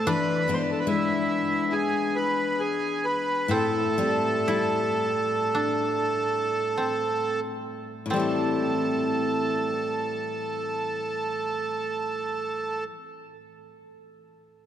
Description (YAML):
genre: celtic folk, Celtic slow air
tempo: 44-75 BPM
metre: 4/4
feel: rubato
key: A minor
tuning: A4 = 439 Hz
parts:
  - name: accordion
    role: melody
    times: 0.0-12.8 s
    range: E4 to C5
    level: -26 LUFS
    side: right 2 dB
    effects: none
  - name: koto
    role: second line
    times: 0.0-12.8 s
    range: C4 to E4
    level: -34 LUFS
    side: left 1 dB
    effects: none
  - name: picked steel-string acoustic guitar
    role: accompaniment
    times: 0.0-13.0 s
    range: A2 to E4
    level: -29 LUFS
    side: left 3 dB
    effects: none
room: wet cathedral reverb, RT60 4.3 s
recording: dark, warm production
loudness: -24 LUFS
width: side -10 dB against mid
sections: 0.0-8.1 A section; 8.1-13.3 B section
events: slowing down 0.1-8.1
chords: 0.1 E7; 3.5 Am7